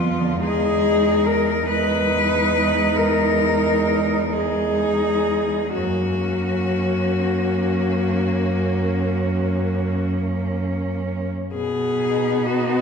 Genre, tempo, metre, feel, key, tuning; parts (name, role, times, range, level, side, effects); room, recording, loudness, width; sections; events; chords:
classical, lyrical piece for cello ensemble; 40-48 BPM (dotted quarters); 12/8; rubato; A4 = 440 Hz
clear cello; melody; 0.0-12.8 s; F4 to B4; -22 LUFS; left 4 dB
clear cello; second line; 0.0-12.8 s; B3 to D#4; -26 LUFS; right 6 dB
rich cello; accompaniment; 0.0-12.8 s; D3 to B3; -26 LUFS; equal
rich cello; bass; 0.0-12.8 s; E2 to B2; -24 LUFS; right 1 dB
wet concert hall reverb, RT60 2.1 s; heard from further back in the room; -18 LUFS; side -6 dB against mid
0.0-11.5 A section; 11.5-12.8 B section
0.4 Emaj7; 5.7 F#; 11.5 B